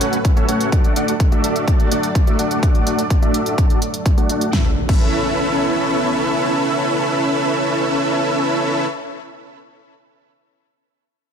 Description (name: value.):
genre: EDM, festival progressive house.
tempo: 126 BPM.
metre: 4/4.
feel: straight.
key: A major.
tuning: A4 = 444 Hz.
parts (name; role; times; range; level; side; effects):
lush unison pad; sustained chords; 0.0-8.5 s; A2 to D5; -26 LUFS; right 1 dB; chorus, phaser, sidechain pumping.
dense compressed supersaw; riff; 0.0-8.9 s; A3 to A5; -18 LUFS; equal; sidechain pumping, low-pass filter, ping-pong delay.
pop drum kit; drums; 0.0-5.0 s; crash cymbal, hi-hat, snare drum; -27 LUFS; right 1 dB; none.
electronic kick drum; drums; 0.2-5.0 s; none; -15 LUFS; equal; none.
impact; sound effects; 4.5-8.5 s; none; -27 LUFS; equal; none.
room: light reverb.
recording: none.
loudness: -15 LUFS.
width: side -7 dB against mid.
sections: 0.0-4.5 A section; 4.5-8.3 B section.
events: filter sweep on supersaw synth 0.0-4.5.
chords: 0.0 F#m/A; 0.7 D; 4.5 Aadd9.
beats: 0.25 | 0.72 1.20 1.68 2.15 | 2.63 3.10 3.58 4.06 | 4.53 5.01 5.49 5.96 | 6.44 6.91 7.39 7.87.